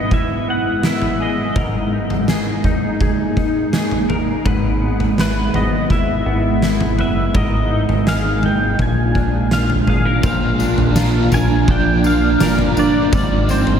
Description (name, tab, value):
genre	dream pop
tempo	83 BPM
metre	4/4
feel	straight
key	unclear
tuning	A4 = 441 Hz
part	pedal steel guitar	melody	0.0-13.8 s	B4 to Ab5	-24 LUFS	equal	analog chorus, diffuse ambient delay
part	ethereal airy pad	sustained chords	0.0-13.8 s	F3 to E4	-20 LUFS	right 1 dB	ensemble chorus, built-in reverb
part	clean electric guitar	arpeggios	0.0-13.8 s	G#2 to B4	-22 LUFS	left 2 dB	ensemble chorus, diffuse ambient delay
part	oversized low-tuned drum kit	drums	0.1-13.8 s	kick drum, snare drum, tambourine, toms	-20 LUFS	equal	none
part	chorused synth bass	bass	4.5-13.8 s	Gb1 to Bb1	-21 LUFS	equal	none
part	crunchy overdriven guitar	accompaniment	10.2-13.8 s	Ab2 to C5	-24 LUFS	right 3 dB	tremolo, analog chorus
part	steel-string zither	texture	10.2-13.8 s	C5 to D5	-35 LUFS	equal	none
room	wet cathedral reverb, RT60 5.8 s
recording	dreamy mix soaked in reverb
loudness	-14 LUFS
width	side -8 dB against mid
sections	0.0-10.2 A section; 10.2-13.8 B section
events	none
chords	0.0 E/G#; 1.6 Absus2; 4.5 E/G#; 7.3 Absus2; 8.8 Bb7; 10.2 Bb; 13.1 Ab